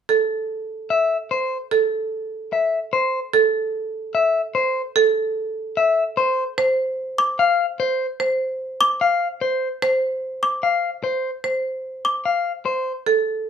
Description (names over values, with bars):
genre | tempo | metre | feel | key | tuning
classical, minimalist pattern music | 148 BPM | 4/4 | straight | unclear | A4 = 438 Hz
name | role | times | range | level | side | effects
marimba with hard mallets | arpeggios | 0.1-13.3 s | A4 to C5 | -21 LUFS | right 4 dB | none
clean electric guitar | melody | 0.9-12.9 s | C5 to F5 | -19 LUFS | left 3 dB | none
trough xylophone with rubber mallets | arpeggios | 7.2-12.3 s | D6 | -19 LUFS | equal | none
room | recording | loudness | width
light reverb | close, detailed microphones | -19 LUFS | side -8 dB against mid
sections
0.1-13.5 A section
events
none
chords
none